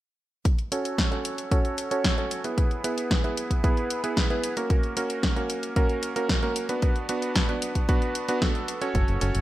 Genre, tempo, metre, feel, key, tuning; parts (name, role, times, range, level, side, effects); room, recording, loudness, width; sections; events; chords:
italo disco; 113 BPM; 4/4; straight; A4 = 440 Hz
electronic kick drum; drums; 0.5-9.1 s; -24 LUFS; equal; studio reverb
house drum kit; drums; 0.5-9.4 s; hi-hat, snare drum; -30 LUFS; left 1 dB; studio reverb, gated reverb
bright electric grand piano; stabs; 0.7-9.4 s; A#3 to C#5; -27 LUFS; right 2 dB; low-pass filter, tape echo
fingered electric bass with an envelope filter; bass; 8.9-9.4 s; F#1; -26 LUFS; equal
light reverb, digital ambience; -23 LUFS; side -15 dB against mid
0.5-9.4 A section
filter sweep on electric grand piano 0.5-9.4
0.5 F#m; 2.6 E; 4.7 F#; 6.8 Bm